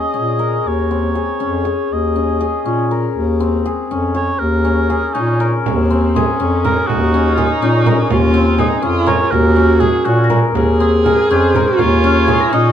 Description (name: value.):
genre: contemporary instrumental, chamber music in an uneven meter.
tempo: 242 BPM (eighths).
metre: 5/8.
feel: straight.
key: Eb dorian.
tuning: A4 = 439 Hz.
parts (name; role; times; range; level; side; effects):
warm oboe; melody; 0.0-12.7 s; Eb4 to Eb5; -20 LUFS; right 3 dB; none.
hammered dulcimer; arpeggios; 0.0-12.7 s; C4 to Bb4; -18 LUFS; left 4 dB; none.
warm bass clarinet; bass; 0.0-12.7 s; Eb2 to Bb2; -16 LUFS; equal; none.
dark viola; second line; 5.7-12.7 s; C4 to Ab4; -18 LUFS; right 2 dB; none.
frame drum; percussion; 5.7-12.5 s; none; -22 LUFS; right 6 dB; none.
celesta; texture; 6.2-12.7 s; C6 to Bb6; -28 LUFS; left 8 dB; none.
room: light reverb.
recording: dark, warm production.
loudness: -12 LUFS.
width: side -9 dB against mid.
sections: 0.0-5.7 A section; 5.7-12.7 B section.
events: none.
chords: 0.0 Eb7sus4; 0.7 Eb13sus4; 1.9 Eb7sus4; 3.1 Eb13sus4; 4.4 Eb7sus4; 5.7 Bbm9/Eb; 9.3 Ebm7; 10.6 Bbm9/Eb; 11.8 Eb9sus4.